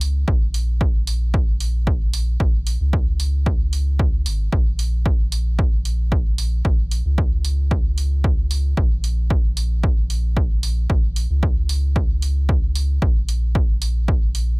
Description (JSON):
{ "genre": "dub techno", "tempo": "113 BPM", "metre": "4/4", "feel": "straight", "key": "Bb minor", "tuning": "A4 = 440 Hz", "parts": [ { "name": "soft dub sub bass", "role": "bass", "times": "0.0-14.6 s", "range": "Ab1 to Db2", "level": "-20 LUFS", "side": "equal", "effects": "sidechain pumping" }, { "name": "electronic hi-hat", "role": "drums", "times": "0.0-14.5 s", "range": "none", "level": "-29 LUFS", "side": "right 4 dB", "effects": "none" }, { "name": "electronic kick drum", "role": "drums", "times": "0.3-14.2 s", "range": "none", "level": "-19 LUFS", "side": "equal", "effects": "none" } ], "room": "digital ambience", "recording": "none", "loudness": "-17 LUFS", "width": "side -34 dB against mid", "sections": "0.0-14.6 A section", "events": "none", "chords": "none", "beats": "| 0.28 0.81 1.34 1.87 | 2.40 2.93 3.46 3.99 | 4.53 5.06 5.59 6.12 | 6.65 7.18 7.71 8.24 | 8.77 9.30 9.83 10.37 | 10.90 11.43 11.96 12.49 | 13.02 13.55 14.08" }